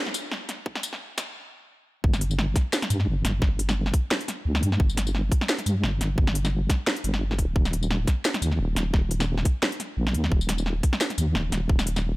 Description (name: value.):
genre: half-time drum and bass.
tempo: 174 BPM.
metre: 4/4.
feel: swing 55% on 16ths, half-time.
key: G minor.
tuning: A4 = 440 Hz.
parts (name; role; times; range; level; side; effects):
drum and bass drum kit; drums; 0.1-12.0 s; hi-hat, snare drum, tambourine; -28 LUFS; equal; small room ambience.
electronic kick drum; drums; 0.7-11.8 s; none; -22 LUFS; equal; small room ambience.
deep soft wobble bass; bass; 2.0-12.2 s; D1 to G2; -24 LUFS; equal; chorus.
room: little or no reverb.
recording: high-pass filter.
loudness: -23 LUFS.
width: side -20 dB against mid.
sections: 0.0-2.0 A section; 2.0-12.2 B section.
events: build-up 0.0-2.0; filter sweep 0.0-2.0; stop 1.4-2.0; drop 2.0-12.2.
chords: none.